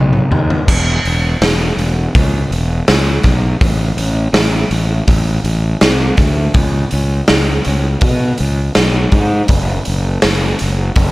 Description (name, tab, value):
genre	quiet-loud alternative rock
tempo	82 BPM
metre	4/4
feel	straight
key	E major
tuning	A4 = 440 Hz
part	fuzz fingered electric bass	bass	0.0-11.1 s	E1 to B2	-15 LUFS	equal	overdrive
part	raw garage drum kit	drums	0.1-11.1 s	crash cymbal, hi-hat, kick drum, snare drum, toms	-14 LUFS	equal	none
room	little or no reverb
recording	none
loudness	-11 LUFS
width	side -20 dB against mid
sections	0.7-11.1 A section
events	drum fill 0.0-0.7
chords	none